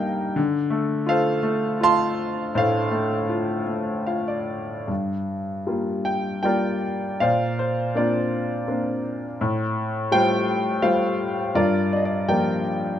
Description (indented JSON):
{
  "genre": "classical, lyrical solo piano",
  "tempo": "74-84 BPM",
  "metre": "3/4",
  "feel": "rubato",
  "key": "G minor from 4.9 s",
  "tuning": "A4 = 438 Hz",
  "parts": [
    { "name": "clear grand piano", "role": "solo", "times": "0.0-13.0 s", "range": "G2 to C6", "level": "-21 LUFS", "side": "left 1 dB", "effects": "none" }
  ],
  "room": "moderate recital hall reverb, RT60 1.6 s",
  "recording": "close, detailed microphones",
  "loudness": "-21 LUFS",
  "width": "side -10 dB against mid",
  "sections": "0.0-4.9 A section; 4.9-13.0 B section",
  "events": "grand piano fill 3.7-4.9",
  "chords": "0.4 Dm7; 4.9 Gm7; 7.2 Bbadd9; 9.4 Fadd9/A; 11.6 Gm7"
}